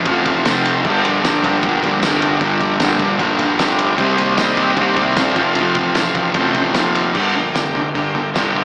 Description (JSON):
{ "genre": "garage rock duo or trio", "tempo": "152 BPM", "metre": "4/4", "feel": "straight", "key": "G minor", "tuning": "A4 = 442 Hz", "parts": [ { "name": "combo organ", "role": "sustained chords", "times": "0.0-8.6 s", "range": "G4 to G5", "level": "-25 LUFS", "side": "equal", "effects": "none" }, { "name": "fuzz guitar", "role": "riff", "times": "0.0-8.6 s", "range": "F2 to C4", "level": "-18 LUFS", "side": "equal", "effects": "distortion" }, { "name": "fuzz picked electric bass", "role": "bass", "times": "0.0-8.6 s", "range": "F1 to Eb2", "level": "-28 LUFS", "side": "equal", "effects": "overdrive" }, { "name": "cloth-damped thuddy drum kit", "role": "drums", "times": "0.1-8.4 s", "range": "crash cymbal, kick drum, ride cymbal, snare drum", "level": "-24 LUFS", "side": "equal", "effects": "none" }, { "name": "tambourine", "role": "percussion", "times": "0.5-8.4 s", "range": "none", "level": "-32 LUFS", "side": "equal", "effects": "none" } ], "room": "light reverb, studio reverb", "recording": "small speaker sound", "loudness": "-16 LUFS", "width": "mono", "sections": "0.0-7.2 A section; 7.2-8.6 B section", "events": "none", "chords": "0.0 F; 0.8 Gm; 4.0 Cm; 5.4 F; 7.2 Gm" }